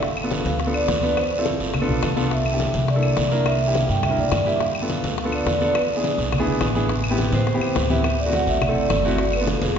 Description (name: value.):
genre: Afro-Cuban jazz.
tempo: 210 BPM.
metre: 4/4.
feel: straight.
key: G mixolydian.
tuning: A4 = 440 Hz.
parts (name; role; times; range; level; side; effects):
vibraphone with soft mallets; melody; 0.0-9.8 s; Ab4 to G5; -24 LUFS; right 2 dB; none.
warm concert grand piano; accompaniment; 0.0-9.7 s; A3 to A5; -24 LUFS; equal; none.
upright bass; bass; 0.0-9.8 s; E1 to A2; -25 LUFS; equal; none.
bongos; percussion; 0.0-9.8 s; none; -31 LUFS; left 4 dB; none.
congas; percussion; 0.0-9.8 s; none; -28 LUFS; left 2 dB; none.
guiro; percussion; 0.0-9.8 s; none; -33 LUFS; right 3 dB; none.
claves; percussion; 0.2-9.5 s; none; -34 LUFS; left 3 dB; none.
room: wet concert hall reverb, RT60 2.0 s.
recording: recorded in a church or concert hall, nothing above 7.5 kHz.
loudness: -19 LUFS.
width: side -7 dB against mid.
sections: 0.0-9.8 A section.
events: grand piano fill 1.7-2.3.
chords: 0.0 G9; 1.2 Dm7; 1.7 G9; 2.3 C9; 4.6 G9; 5.8 E7; 6.9 Am7; 8.0 D9; 9.2 G9.